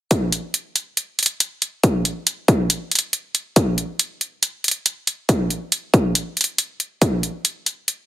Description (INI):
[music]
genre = dubstep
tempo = 139 BPM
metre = 4/4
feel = swing 55% on 16ths, half-time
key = none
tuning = none
[part]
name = electronic hi-hat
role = drums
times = 0.1-8.0 s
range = none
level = -18 LUFS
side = equal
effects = overdrive
[part]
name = electronic kick drum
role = drums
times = 0.1-7.1 s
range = none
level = -17 LUFS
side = equal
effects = high-pass filter on kick, high-pass filter on room
[sound]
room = little or no reverb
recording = dense, heavily limited modern master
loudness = -19 LUFS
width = side -14 dB against mid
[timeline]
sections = 0.1-8.1 A section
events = none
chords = none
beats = | 0.11 0.54 0.97 1.40 | 1.84 2.27 2.70 3.13 | 3.56 3.99 4.43 4.86 | 5.29 5.72 6.15 6.58 | 7.02 7.45 7.88